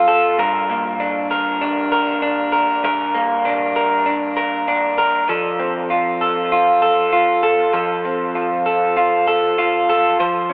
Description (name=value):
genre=dream pop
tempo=98 BPM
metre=4/4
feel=straight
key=F major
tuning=A4 = 440 Hz
part: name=electric guitar at the edge of break-up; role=solo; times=0.0-10.5 s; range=G2 to C5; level=-15 LUFS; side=equal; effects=wide subtle chorus, tape echo
room=moderate shimmer reverb, RT60 7.1 s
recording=telephone sound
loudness=-15 LUFS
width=side -27 dB against mid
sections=0.0-10.5 A section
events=none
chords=0.4 Gm; 5.3 F